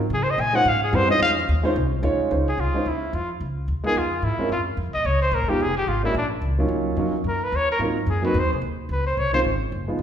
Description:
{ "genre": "jazz, small-group swing and bop", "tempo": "218 BPM", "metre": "4/4", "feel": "swing 59% on 8ths", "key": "Db major", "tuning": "A4 = 439 Hz", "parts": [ { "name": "upright bass", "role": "bass", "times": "0.0-10.0 s", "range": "F1 to Db3", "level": "-25 LUFS", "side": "equal", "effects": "none" }, { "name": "breathy trumpet", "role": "melody", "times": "0.1-9.4 s", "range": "D4 to Ab5", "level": "-23 LUFS", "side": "left 1 dB", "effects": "none" }, { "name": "warm concert grand piano", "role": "accompaniment", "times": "0.5-10.0 s", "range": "Eb3 to Db5", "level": "-25 LUFS", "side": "right 1 dB", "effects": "none" } ], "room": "wet recital hall reverb, RT60 1.4 s", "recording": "recorded in a church or concert hall", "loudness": "-20 LUFS", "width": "side -9 dB against mid", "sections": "0.0-2.3 A section; 2.3-10.0 B section", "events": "trumpet solo 0.0-2.3", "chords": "0.1 Dbmaj9; 3.4 Db69; 4.5 Gbmaj9; 5.6 Fm69; 6.2 Bbm; 6.7 Ebm9; 7.8 Ab13; 8.9 Dbmaj9" }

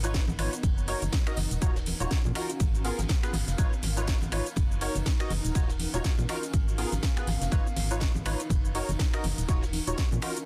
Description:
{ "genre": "piano house", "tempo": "122 BPM", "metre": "4/4", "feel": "swing 58% on 16ths", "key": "unclear", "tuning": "A4 = 440 Hz", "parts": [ { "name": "percussive organ stab", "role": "riff", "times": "0.0-10.4 s", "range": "B3 to D#5", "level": "-38 LUFS", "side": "equal", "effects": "ensemble chorus, sidechain pumping, dub echo" }, { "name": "organ-like FM bass", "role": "bass", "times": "0.0-10.2 s", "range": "D#1 to A#2", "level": "-34 LUFS", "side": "equal", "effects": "sidechain pumping" }, { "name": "house drum kit", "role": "drums", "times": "0.0-10.5 s", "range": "cabasa, finger snaps, hi-hat, snare drum", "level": "-38 LUFS", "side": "equal", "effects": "none" }, { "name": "vintage brush drum kit", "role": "drums", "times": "0.0-10.4 s", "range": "hi-hat, ride cymbal, snare drum", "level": "-48 LUFS", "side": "equal", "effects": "high-pass filter on cymbals, high-pass filter on hats, soft clipping on snare, high-pass filter on snare, high-pass filter on room" }, { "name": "tambourine and congas", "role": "percussion", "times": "0.0-10.4 s", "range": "none", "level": "-41 LUFS", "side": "equal", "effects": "none" }, { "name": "granular cloud pad", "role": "texture", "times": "0.0-10.5 s", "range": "B3 to E#5", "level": "-42 LUFS", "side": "equal", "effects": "built-in reverb, sidechain pumping" }, { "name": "electronic kick drum", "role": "drums", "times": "0.1-10.1 s", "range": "none", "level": "-29 LUFS", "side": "equal", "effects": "none" } ], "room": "little or no reverb", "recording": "dense, heavily limited modern master", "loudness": "-28 LUFS", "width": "mono", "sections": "0.0-10.5 A section", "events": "none", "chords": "0.0 C#9/G#; 0.6 F#6; 1.6 D#m9; 2.6 G#m69; 3.6 C#9/G#; 4.6 F#6; 5.6 D#m9; 6.5 G#m69; 7.5 C#9/G#; 8.5 F#6; 9.5 D#m9" }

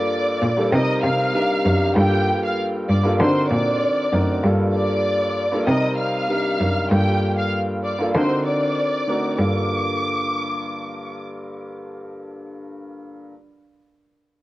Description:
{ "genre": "hip hop, boom-bap hip-hop", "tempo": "97 BPM", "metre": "4/4", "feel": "swing 54% on 16ths", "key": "G minor", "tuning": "A4 = 440 Hz", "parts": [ { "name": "rich studio violin section", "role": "melody", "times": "0.0-11.2 s", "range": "G4 to F6", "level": "-23 LUFS", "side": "equal", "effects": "high-pass filter, low-pass filter, cassette tape, analog delay" }, { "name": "dark baby grand piano", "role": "accompaniment", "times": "0.0-13.3 s", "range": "G2 to Bb4", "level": "-23 LUFS", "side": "equal", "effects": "high-pass filter, low-pass filter, cassette tape" }, { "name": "rich cello", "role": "bass", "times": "0.4-12.6 s", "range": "F#2 to D3", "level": "-22 LUFS", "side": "equal", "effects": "none" } ], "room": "light reverb, studio reverb", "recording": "home recording on cassette", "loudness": "-18 LUFS", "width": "side -17 dB against mid", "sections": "0.0-4.4 A section; 4.4-9.4 B section; 9.4-11.9 C section", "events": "none", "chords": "0.0 Gm7; 0.7 Cm7; 2.0 Gm7; 3.2 D7b9b13; 4.4 Gm7; 5.7 Cm7; 6.9 Gm7; 8.1 D7b9b13; 9.4 Gm7" }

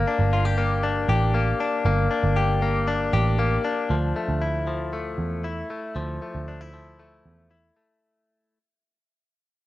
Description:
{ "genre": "jangly indie pop", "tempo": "117 BPM", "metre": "4/4", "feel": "straight", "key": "D minor", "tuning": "A4 = 440 Hz", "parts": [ { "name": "direct-recorded clean electric guitar", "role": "arpeggios", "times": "0.0-8.6 s", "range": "F3 to G4", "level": "-25 LUFS", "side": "left 4 dB", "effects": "cassette tape" }, { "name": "vintage muted picked electric bass", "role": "bass", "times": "0.0-7.7 s", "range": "G1 to E2", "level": "-24 LUFS", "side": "right 2 dB", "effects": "none" } ], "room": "moderate studio reverb, RT60 0.5 s", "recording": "home recording on cassette", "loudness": "-21 LUFS", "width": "side -15 dB against mid", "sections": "0.0-3.9 A section; 3.9-8.0 B section", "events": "fade-out 3.9-8.0", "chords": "0.0 Gm; 3.9 Dmadd9" }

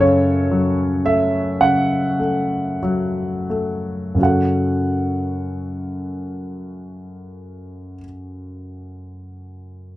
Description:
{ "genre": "classical, lyrical solo piano", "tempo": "42-61 BPM", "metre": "4/4", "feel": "rubato", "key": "F# minor", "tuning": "A4 = 440 Hz", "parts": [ { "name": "dark grand piano", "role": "solo", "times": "0.0-10.0 s", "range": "F#2 to F#5", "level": "-19 LUFS", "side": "equal", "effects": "none" } ], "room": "moderate studio reverb, RT60 0.6 s", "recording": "dark, warm production", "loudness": "-18 LUFS", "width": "side -16 dB against mid", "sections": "0.0-4.2 A section; 4.2-9.7 B section", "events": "slowing down 0.0-4.2", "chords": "0.0 F#m" }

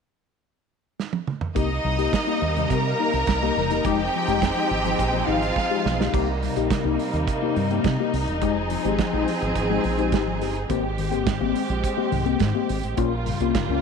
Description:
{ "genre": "disco", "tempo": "105 BPM", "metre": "4/4", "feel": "straight", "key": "unclear", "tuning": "A4 = 440 Hz", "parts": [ { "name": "warm soul drum kit", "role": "drums", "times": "1.0-13.7 s", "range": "crash cymbal, hi-hat, kick drum, snare drum, toms", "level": "-28 LUFS", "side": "right 5 dB", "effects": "none" }, { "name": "bright symphonic violin section", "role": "second line", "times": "1.6-6.1 s", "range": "Eb4 to Bb5", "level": "-25 LUFS", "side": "right 1 dB", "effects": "none" }, { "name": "tine electric piano", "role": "accompaniment", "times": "1.6-13.8 s", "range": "G2 to G4", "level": "-26 LUFS", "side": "left 11 dB", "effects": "phaser" }, { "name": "warm studio string section", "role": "sustained chords", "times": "1.6-13.8 s", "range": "C3 to Ab4", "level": "-27 LUFS", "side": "right 1 dB", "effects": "none" }, { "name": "deep dub fingered electric bass", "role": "bass", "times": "1.6-13.8 s", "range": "E1 to C3", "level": "-27 LUFS", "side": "right 2 dB", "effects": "none" } ], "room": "moderate echo chamber reverb, RT60 2.1 s", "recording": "1960s-style stereo", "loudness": "-21 LUFS", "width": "side -6 dB against mid", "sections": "0.0-1.6 A section; 1.6-6.1 B section; 6.1-13.8 C section", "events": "drum fill 1.0-1.6, 5.6-6.1", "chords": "0.0 N.C.; 1.6 Cm7; 3.8 Fm7; 6.1 Cm7; 8.4 Fm7; 10.7 Abmaj7; 13.0 Gm7b5/Bb" }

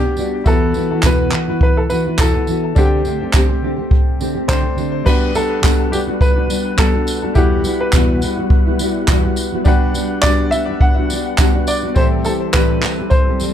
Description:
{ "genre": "acoustic pop", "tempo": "104 BPM", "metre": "4/4", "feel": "swing 55% on 16ths", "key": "G major", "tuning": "A4 = 440 Hz", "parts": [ { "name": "clear upright piano", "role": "melody", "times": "0.0-13.5 s", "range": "G4 to F#5", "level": "-21 LUFS", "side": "equal", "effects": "plate reverb, ping-pong delay" }, { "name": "bright upright piano", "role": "accompaniment", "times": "0.0-13.5 s", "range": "B2 to G5", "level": "-29 LUFS", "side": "left 4 dB", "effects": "plate reverb" }, { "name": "nylon-string guitar", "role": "accompaniment", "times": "0.0-13.5 s", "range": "E2 to G4", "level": "-19 LUFS", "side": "left 1 dB", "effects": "double-tracked left and right" }, { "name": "tambourine", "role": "percussion", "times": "0.2-13.5 s", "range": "none", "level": "-33 LUFS", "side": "right 6 dB", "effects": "none" }, { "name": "jazz brush drum kit", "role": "drums", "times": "0.5-13.5 s", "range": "crash cymbal, handclaps, kick drum, tambourine", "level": "-15 LUFS", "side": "equal", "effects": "none" }, { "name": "tonewheel organ", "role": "sustained chords", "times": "5.1-13.5 s", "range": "G3 to F#5", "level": "-27 LUFS", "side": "right 1 dB", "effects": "overdrive, fast rotary speaker" } ], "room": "light reverb", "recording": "dark, warm production", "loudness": "-13 LUFS", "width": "side -10 dB against mid", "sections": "0.0-5.1 A section; 5.1-13.5 B section", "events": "none", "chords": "0.5 Esus2; 2.8 D7sus4; 5.1 Gmaj7; 7.4 Emadd9; 9.7 Gmaj7; 12.0 Am7" }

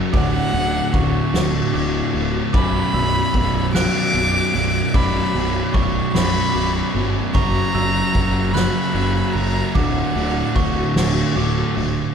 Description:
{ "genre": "post-rock", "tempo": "50 BPM (dotted quarters)", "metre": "6/8", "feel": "straight", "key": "B minor", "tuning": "A4 = 440 Hz", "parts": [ { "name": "icy glass pad", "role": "sustained chords", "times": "0.0-12.1 s", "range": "D3 to D5", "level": "-34 LUFS", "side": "right 1 dB", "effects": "none" }, { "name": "fuzz guitar", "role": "riff", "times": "0.0-12.1 s", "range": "B1 to F#3", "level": "-24 LUFS", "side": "left 7 dB", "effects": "distortion" }, { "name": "thick fuzz guitar", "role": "riff", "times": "0.0-12.1 s", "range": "B1 to F#3", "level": "-23 LUFS", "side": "right 8 dB", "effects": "distortion" }, { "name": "dark violin", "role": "melody", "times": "0.1-11.4 s", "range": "F#5 to D6", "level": "-24 LUFS", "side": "equal", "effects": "none" }, { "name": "glockenspiel with soft plastic mallets", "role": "arpeggios", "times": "0.1-12.1 s", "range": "C#6 to F#6", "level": "-30 LUFS", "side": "right 4 dB", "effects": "none" }, { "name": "growling fingered electric bass", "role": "bass", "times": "0.1-12.0 s", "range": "B0 to G1", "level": "-25 LUFS", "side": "equal", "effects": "overdrive" }, { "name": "soft-mallet drum kit", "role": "drums", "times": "0.1-12.0 s", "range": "crash cymbal, kick drum, ride cymbal, snare drum", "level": "-22 LUFS", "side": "left 1 dB", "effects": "none" } ], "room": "moderate scoring stage reverb, RT60 2.2 s", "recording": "recorded in a church or concert hall", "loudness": "-16 LUFS", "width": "side -7 dB against mid", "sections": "0.0-12.1 A section", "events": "none", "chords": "0.1 D; 2.5 Bm; 7.3 F#; 9.8 D" }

